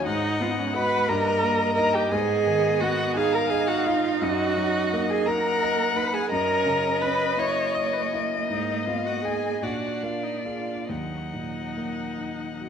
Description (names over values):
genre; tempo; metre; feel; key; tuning
classical, slow romantic movement for piano quintet; 44-60 BPM (dotted quarters); 6/8; rubato; Eb minor; A4 = 440 Hz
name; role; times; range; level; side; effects
rich violin; melody; 0.0-12.7 s; D5 to Gb5; -29 LUFS; left 6 dB; none
rich violin; second line; 0.0-12.7 s; Eb5 to Db6; -31 LUFS; left 3 dB; none
warm cello; second line; 0.0-12.7 s; Gb3 to Eb4; -32 LUFS; right 8 dB; none
warm grand piano; accompaniment; 0.0-12.7 s; Eb2 to Eb5; -30 LUFS; left 1 dB; none
warm viola; accompaniment; 0.0-12.7 s; Db4 to Eb5; -26 LUFS; right 4 dB; none
room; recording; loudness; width
moderate scoring stage reverb, RT60 1.7 s; none; -22 LUFS; side -7 dB against mid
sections
0.0-12.7 A section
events
none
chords
0.1 Abm7; 1.1 Eb/G; 2.1 Abm; 4.2 Ebm/Gb; 6.3 Gb7; 8.5 Abm; 9.6 Bb7; 10.9 Ebm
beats
| 0.06 1.08 | 2.10 3.15 | 4.21 5.27 | 6.31 7.38 | 8.49 9.62 | 10.88 12.18